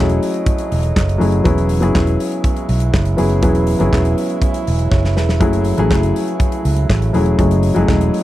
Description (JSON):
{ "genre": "disco", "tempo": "121 BPM", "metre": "4/4", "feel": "straight", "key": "F# dorian", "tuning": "A4 = 438 Hz", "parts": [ { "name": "dark grand piano", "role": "accompaniment", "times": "0.0-8.2 s", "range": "F#3 to C#5", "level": "-17 LUFS", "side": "left 2 dB", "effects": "none" }, { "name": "warm French horn section", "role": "sustained chords", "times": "0.0-8.2 s", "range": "C#3 to D#5", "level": "-25 LUFS", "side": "right 7 dB", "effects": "stereo widening" }, { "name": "fingered electric bass", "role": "bass", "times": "0.0-8.1 s", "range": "E1 to C#2", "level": "-16 LUFS", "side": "equal", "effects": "none" }, { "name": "modern studio drum kit", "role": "drums", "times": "0.1-8.2 s", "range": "handclaps, hi-hat, kick drum, snare drum", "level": "-19 LUFS", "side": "equal", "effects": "none" } ], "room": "small room ambience", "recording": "dry, close 1970s-style studio recording", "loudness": "-13 LUFS", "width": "side -15 dB against mid", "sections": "0.0-8.2 A section", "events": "drum fill 4.9-5.4", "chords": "0.0 F#m7; 1.5 E6; 5.4 F#m7", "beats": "0.46 0.96 | 1.45 1.95 2.44 2.94 | 3.43 3.92 4.42 4.91 | 5.41 5.90 6.39 6.89 | 7.38 7.88" }